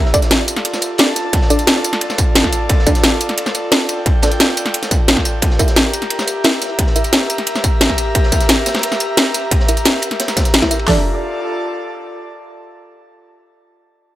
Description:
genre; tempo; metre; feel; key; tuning
dark technical drum and bass; 176 BPM; 4/4; straight; D minor; A4 = 441 Hz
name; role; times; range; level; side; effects
airy breathy pad; texture; 0.0-12.2 s; F4 to Bb5; -22 LUFS; equal; chorus, sidechain pumping
filtered dub chord stab; stabs; 0.1-11.0 s; D4 to E5; -22 LUFS; right 1 dB; chorus, tape echo
crunchy breakbeat drum kit; drums; 0.1-10.9 s; ride cymbal, snare drum; -25 LUFS; equal; high-pass filter on cymbals, high-pass filter on snare, high-pass filter on room
drum and bass drum kit; drums; 0.1-10.8 s; hi-hat, snare drum, tambourine; -15 LUFS; equal; overdrive
dubstep drum kit; drums; 0.1-11.0 s; hi-hat, kick drum, snare drum; -15 LUFS; equal; distortion
room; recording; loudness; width
light reverb, digital ambience; none; -13 LUFS; side -14 dB against mid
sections
0.0-10.9 A section; 10.9-12.2 B section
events
filter sweep on synth stab 0.0-10.9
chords
0.0 Dm; 5.4 Edim; 10.9 Dm

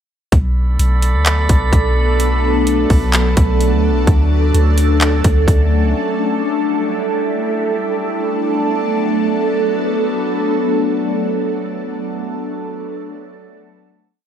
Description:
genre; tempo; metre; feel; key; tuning
hip hop, atmospheric cloud-rap; 128 BPM; 4/4; half-time; B minor; A4 = 441 Hz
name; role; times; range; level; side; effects
ethereal airy pad; sustained chords; 0.9-12.1 s; F#3 to A4; -17 LUFS; equal; ensemble chorus, built-in reverb, phaser, sidechain pumping
soft 808-style bass; bass; 0.3-5.9 s; B1 to D2; -14 LUFS; equal; none
trap drum kit; drums; 0.3-5.6 s; handclaps, hi-hat, kick drum; -15 LUFS; equal; none
drifting glass-harmonics texture; texture; 0.6-4.0 s; A4 to B5; -24 LUFS; right 3 dB; chorus, built-in reverb
room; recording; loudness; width
moderate echo chamber reverb, RT60 1.4 s, digital ambience; none; -14 LUFS; side -9 dB against mid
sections
0.3-7.8 verse; 7.8-11.6 final chord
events
none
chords
0.3 Bm7; 4.1 Dmaj7; 5.9 A7sus4; 7.8 Bm7

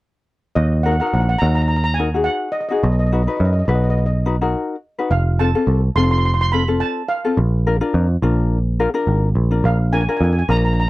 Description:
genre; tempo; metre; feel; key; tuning
calypso; 106 BPM; 4/4; swing 54% on 16ths; Eb harmonic minor; A4 = 438 Hz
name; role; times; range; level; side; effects
steel pan; melody; 0.6-10.9 s; Eb5 to C6; -23 LUFS; right 2 dB; none
picked electric bass; bass; 0.6-10.9 s; F1 to F#2; -16 LUFS; equal; none
ukulele; accompaniment; 0.9-10.8 s; C4 to B4; -21 LUFS; left 3 dB; none
room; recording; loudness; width
little or no reverb; dry, close 1970s-style studio recording; -16 LUFS; side -18 dB against mid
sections
0.6-10.9 A section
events
none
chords
0.6 Ebm; 2.8 B; 5.1 F; 7.4 Bb

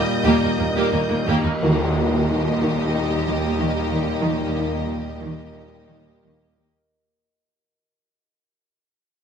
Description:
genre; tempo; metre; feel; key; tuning
cinematic, suspense film score; 90 BPM; 4/4; straight; unclear; A4 = 440 Hz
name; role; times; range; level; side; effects
rich studio violin section; melody; 0.0-6.7 s; Eb5; -32 LUFS; left 2 dB; none
rich studio violin section; second line; 0.0-6.7 s; Bb3 to G4; -29 LUFS; right 1 dB; none
warm studio viola section; accompaniment; 0.0-6.7 s; Bb3; -27 LUFS; equal; none
glass harmonica; sustained chords; 0.0-6.9 s; G4 to Eb5; -31 LUFS; equal; none
mellow French horn section; sustained chords; 0.0-6.6 s; Bb3 to Eb4; -30 LUFS; left 7 dB; none
warm trombone section; sustained chords; 0.0-6.6 s; Bb2 to G3; -30 LUFS; right 2 dB; none
warm studio cello section; riff; 0.0-6.8 s; Eb3 to Eb4; -28 LUFS; right 1 dB; none
warm studio violin section; texture; 0.0-1.2 s; Eb6 to G6; -32 LUFS; left 1 dB; none
warm studio cello section; bass; 0.3-6.7 s; Eb2; -27 LUFS; right 1 dB; none
warm studio double bass section; bass; 0.3-6.7 s; Eb2; -28 LUFS; right 2 dB; none
tam-tam; percussion; 1.6-4.2 s; none; -28 LUFS; left 2 dB; none
room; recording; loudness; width
moderate scoring stage reverb, RT60 1.9 s; none; -19 LUFS; side -7 dB against mid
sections
0.0-1.6 A section; 1.6-6.9 B section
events
fade-out 1.6-6.9; band accent 1.6-2.3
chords
0.0 Eb

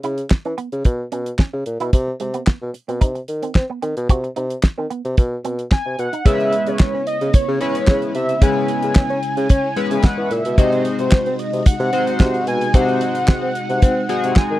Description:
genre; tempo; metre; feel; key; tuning
early-eighties boogie funk; 111 BPM; 4/4; straight; C# minor; A4 = 435 Hz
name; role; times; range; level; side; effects
electric guitar with an envelope filter; riff; 0.0-6.2 s; G#3 to F#4; -28 LUFS; right 6 dB; lush chorus
mellow bassoon; bass; 0.0-14.6 s; A#2 to C#4; -22 LUFS; equal; none
damped 70s drum kit; drums; 0.0-14.5 s; handclaps, hi-hat, kick drum, snare drum; -13 LUFS; equal; none
warm velvety synth lead; melody; 5.7-14.6 s; B#4 to G#5; -22 LUFS; equal; chorus, slapback echo
chorused polysynth; accompaniment; 6.2-14.6 s; G#3 to B#4; -23 LUFS; left 3 dB; none
string machine, violins; sustained chords; 6.3-14.6 s; B#2 to F#4; -27 LUFS; equal; ensemble chorus
room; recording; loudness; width
little or no reverb; dry, close 1970s-style studio recording; -16 LUFS; side -15 dB against mid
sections
0.0-6.3 A section; 6.3-14.6 B section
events
none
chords
0.0 C#m7; 1.9 G# (rootless); 6.3 C#m7; 10.6 G#7

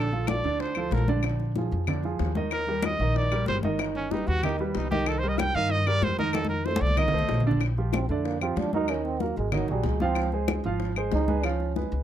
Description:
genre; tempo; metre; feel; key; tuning
Afro-Cuban jazz; 188 BPM; 4/4; straight; Bb major; A4 = 440 Hz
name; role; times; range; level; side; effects
warm trumpet; melody; 0.0-7.5 s; Bb3 to G5; -28 LUFS; right 1 dB; none
warm grand piano; accompaniment; 0.0-12.0 s; D3 to F5; -30 LUFS; right 3 dB; none
upright bass; bass; 0.0-12.0 s; G1 to G2; -28 LUFS; equal; none
congas; percussion; 0.1-12.0 s; none; -32 LUFS; left 2 dB; none
bongos; percussion; 0.3-12.0 s; none; -36 LUFS; left 9 dB; none
claves; percussion; 0.3-11.6 s; none; -35 LUFS; left 8 dB; none
trombone with cup mute; second line; 7.9-11.8 s; Gb3 to Eb4; -30 LUFS; right 6 dB; none
room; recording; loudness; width
light reverb; close, detailed microphones; -24 LUFS; side -10 dB against mid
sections
0.0-7.6 A section; 7.6-12.0 A section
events
trumpet solo 0.0-7.6; drum fill 6.3-7.6; trombone solo 7.6-12.0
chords
0.0 Bbmaj7; 1.2 Bb7; 2.5 Ebmaj7; 3.8 Gaug; 5.1 Cm7; 6.3 F7; 7.6 Bb6; 8.9 Ebm; 9.5 Absus2; 10.2 Dbmaj9; 11.4 Db7

